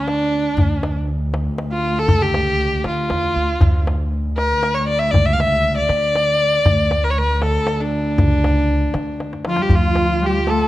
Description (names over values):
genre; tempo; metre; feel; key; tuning
Persian modal ensemble; 118 BPM; 3/4; straight; D avaz esfahan; A4 = 440 Hz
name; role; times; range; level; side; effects
clear kamancheh; melody; 0.0-10.7 s; D4 to F5; -19 LUFS; equal; none
upright bass; bass; 0.0-10.6 s; C#2 to D3; -21 LUFS; equal; none
warm double bass; drone; 0.0-9.8 s; D2; -26 LUFS; left 1 dB; none
tombak; percussion; 0.1-10.7 s; none; -20 LUFS; left 1 dB; none
dark cello; second line; 9.4-10.7 s; F3 to A3; -22 LUFS; left 4 dB; none
santur; second line; 9.5-10.7 s; F4 to A4; -24 LUFS; right 4 dB; none
room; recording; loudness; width
light reverb; close, detailed microphones; -16 LUFS; side -15 dB against mid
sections
0.0-9.7 A section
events
drum fill 9.2-9.7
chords
none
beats
0.06 | 0.57 1.07 1.58 | 2.09 2.60 3.10 | 3.61 4.12 4.63 | 5.13 5.64 6.15 | 6.66 7.17 7.67 | 8.18 8.69 9.20 | 9.71 10.22